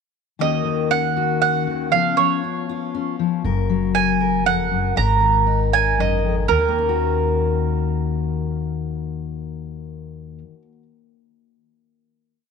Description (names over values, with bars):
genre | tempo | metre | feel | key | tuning
folk | 118 BPM | 3/4 | straight | Eb minor | A4 = 439 Hz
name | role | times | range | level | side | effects
mandolin | melody | 0.4-10.4 s | Bb4 to Bb5 | -20 LUFS | right 10 dB | none
fingerpicked steel-string acoustic guitar | accompaniment | 0.4-10.8 s | Eb2 to Bb4 | -22 LUFS | left 10 dB | none
upright bass | bass | 3.4-10.4 s | Gb1 to Eb2 | -24 LUFS | equal | none
room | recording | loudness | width
moderate plate reverb, RT60 3.5 s | 1960s-style stereo with parts hard left and right | -18 LUFS | side -6 dB against mid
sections
0.4-6.5 verse; 6.5-9.5 final chord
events
none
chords
0.4 Ebm7; 1.9 Db7; 3.4 Gb; 5.0 Absus2; 6.5 Ebm7